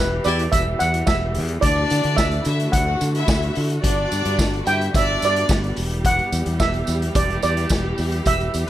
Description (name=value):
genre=disco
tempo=109 BPM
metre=4/4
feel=straight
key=unclear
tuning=A4 = 439 Hz
part: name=steel pan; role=melody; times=0.0-8.7 s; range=B4 to G5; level=-22 LUFS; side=right 3 dB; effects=none
part: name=warm studio string section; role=sustained chords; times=0.0-8.7 s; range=D3 to G4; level=-28 LUFS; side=equal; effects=none
part: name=fingered electric bass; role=bass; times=0.0-8.6 s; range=E1 to D3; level=-23 LUFS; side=equal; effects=none
part: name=warm horn section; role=stabs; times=0.2-0.4, 8.7 s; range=E4 to B4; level=-25 LUFS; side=left 3 dB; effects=none
part: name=vintage drum kit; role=drums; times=0.2-8.7 s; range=hi-hat, kick drum, snare drum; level=-23 LUFS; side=equal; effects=none
part: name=tambourine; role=percussion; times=0.2-8.7 s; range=none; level=-33 LUFS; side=right 7 dB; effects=none
part: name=warm studio violin section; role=second line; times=1.6-5.7 s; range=D4 to F#5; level=-24 LUFS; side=left 1 dB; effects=none
room=small room ambience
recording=none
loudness=-18 LUFS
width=side -13 dB against mid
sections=0.0-8.7 A section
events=band accent 0.0-1.6, 8.3-8.7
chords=0.0 Em; 1.6 Dadd9; 3.8 Gmaj7; 5.8 Em